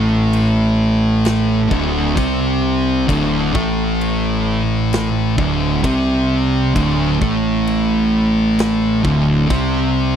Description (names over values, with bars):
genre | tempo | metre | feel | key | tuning
stoner and doom metal | 66 BPM | 4/4 | straight | unclear | A4 = 439 Hz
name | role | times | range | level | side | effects
thick fuzz guitar | riff | 0.0-10.2 s | D2 to C4 | -19 LUFS | left 9 dB | distortion
thick fuzz guitar | riff | 0.0-10.2 s | D2 to C4 | -18 LUFS | right 7 dB | distortion
fuzz fingered electric bass | bass | 0.0-10.2 s | D1 to C2 | -21 LUFS | left 1 dB | overdrive
big rock drum kit | drums | 0.3-9.7 s | crash cymbal, kick drum, snare drum | -25 LUFS | left 1 dB | none
room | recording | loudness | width
little or no reverb | dry, close 1970s-style studio recording | -14 LUFS | side -8 dB against mid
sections
0.0-10.2 A section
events
none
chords
0.0 D5